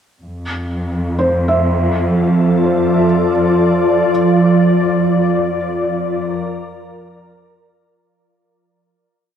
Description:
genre	ambient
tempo	62 BPM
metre	4/4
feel	straight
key	F major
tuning	A4 = 440 Hz
part	glassy FM pad	sustained chords	1.8-8.0 s	F3 to D5	-14 LUFS	equal	ensemble chorus, built-in reverb
part	dark symphonic cello section	bass	0.2-7.9 s	F2	-20 LUFS	equal	none
part	felt-muted upright piano	arpeggios	1.2-4.1 s	C5 to E5	-21 LUFS	right 1 dB	wide subtle chorus, analog delay
room	wet cathedral reverb, RT60 5.7 s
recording	dreamy mix soaked in reverb, cassette tape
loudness	-13 LUFS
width	side -8 dB against mid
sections	0.2-8.0 A section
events	fade-in on ambient pad 0.2-8.0; fade-out on cello section 0.2-8.0; fade-out 4.1-8.0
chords	0.2 F6; 4.1 Bb/F

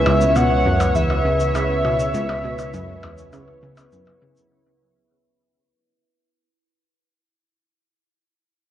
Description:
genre	ambient, sequencer-driven space music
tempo	101 BPM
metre	4/4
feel	straight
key	C# minor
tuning	A4 = 437 Hz
part	pulse-width lead	melody	0.0-3.9 s	E5 to F#5	-22 LUFS	left 1 dB	chorus, tape echo
part	lush unison pad	sustained chords	0.0-4.5 s	C#3 to C#5	-26 LUFS	equal	chorus
part	concert harp	arpeggios	0.0-6.8 s	B3 to E5	-26 LUFS	right 1 dB	auto-pan, tape echo
part	analog drone	bass	0.0-4.5 s	C#2	-24 LUFS	equal	chorus, phaser, transformer saturation
part	analog pluck	riff	0.1-4.3 s	C#2 to C#3	-24 LUFS	equal	chorus, tape echo
part	percussion blips and shaker	percussion	0.1-4.5 s	none	-30 LUFS	left 2 dB	tape echo
room	wet lush hall reverb, RT60 2.7 s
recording	worn, warbling old tape, cassette tape, warbly pitch drift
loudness	-17 LUFS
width	side -11 dB against mid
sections	0.0-4.5 A section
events	fade-out 0.0-4.5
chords	0.0 C#m7

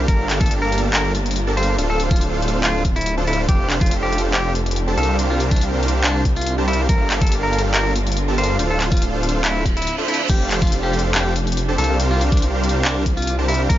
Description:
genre	future bass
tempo	141 BPM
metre	4/4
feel	half-time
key	unclear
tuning	A4 = 436 Hz
part	warm symphonic string section	sustained chords	0.0-13.8 s	C3 to A5	-32 LUFS	right 2 dB	none
part	supersaw chords	riff	0.0-13.8 s	D4 to A5	-24 LUFS	right 1 dB	sidechain pumping
part	wide detuned saw bass	bass	0.0-13.8 s	D1 to C2	-21 LUFS	equal	chorus, sidechain pumping
part	clean electric guitar	melody	0.1-13.8 s	D4 to C5	-25 LUFS	equal	sidechain pumping, dub echo
part	dubstep drum kit	drums	0.1-13.8 s	crash cymbal, handclaps, hi-hat, ride cymbal	-24 LUFS	left 1 dB	overdrive
part	electronic kick drum	drums	0.1-13.8 s	none	-18 LUFS	equal	overdrive
part	reverse cymbal	sound effects	9.6-10.3 s	none	-30 LUFS	right 5 dB	none
room	little or no reverb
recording	nothing above 7.5 kHz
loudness	-16 LUFS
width	side -13 dB against mid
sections	0.0-13.8 A section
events	reverse cymbal 9.6-10.3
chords	0.1 Gm9; 1.8 Dm7; 3.5 F69; 5.0 C9sus4; 6.9 Gm9; 8.6 Dm7; 10.3 F69; 11.8 C9sus4

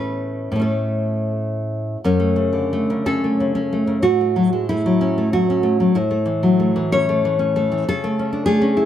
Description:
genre	romantic piece for solo classical guitar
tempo	78-101 BPM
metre	3/4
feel	rubato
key	F# minor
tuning	A4 = 435 Hz
part	nylon-string guitar	solo	0.0-8.9 s	F#2 to C#5	-17 LUFS	left 1 dB	none
room	moderate studio reverb, RT60 0.5 s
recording	none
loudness	-17 LUFS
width	side -10 dB against mid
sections	0.0-2.0 A section; 2.0-8.9 B section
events	none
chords	0.0 A; 2.0 F#m; 4.1 F#m/A; 5.9 A; 7.9 A/C#

